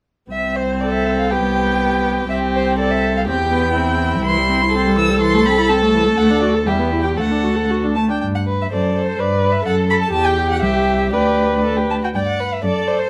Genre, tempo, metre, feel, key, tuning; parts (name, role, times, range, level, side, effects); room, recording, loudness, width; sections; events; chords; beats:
quick classical-period movement for string quartet; 115-128 BPM; 2/4; rubato; C major, G major from 4.2 s; A4 = 440 Hz
warm violin; melody; 0.3-13.1 s; C5 to E6; -24 LUFS; equal
warm viola; accompaniment; 0.3-13.1 s; E3 to B4; -23 LUFS; equal
warm cello; bass; 0.3-13.0 s; C2 to G2; -23 LUFS; equal
dark violin; second line; 0.8-13.1 s; E4 to D5; -23 LUFS; equal
moderate studio reverb, RT60 0.9 s; -17 LUFS; mono
0.3-8.2 A section; 8.2-13.1 B section
0.3 C6; 1.3 G/C; 2.3 C5; 3.3 C/E; 4.2 C; 5.2 Am/C; 6.2 D; 6.7 Em; 7.2 D; 8.2 G; 8.7 D7/F#; 9.2 G; 9.7 F#m; 10.1 Em; 10.6 C; 11.1 G/D; 12.1 G
| 0.31 0.82 | 1.31 1.80 | 2.30 2.79 | 3.27 3.75 | 4.25 4.73 | 5.20 5.68 | 6.17 6.66 | 7.18 7.69 | 8.21 8.71 | 9.19 9.66 | 10.13 10.62 | 11.13 11.64 | 12.15 12.64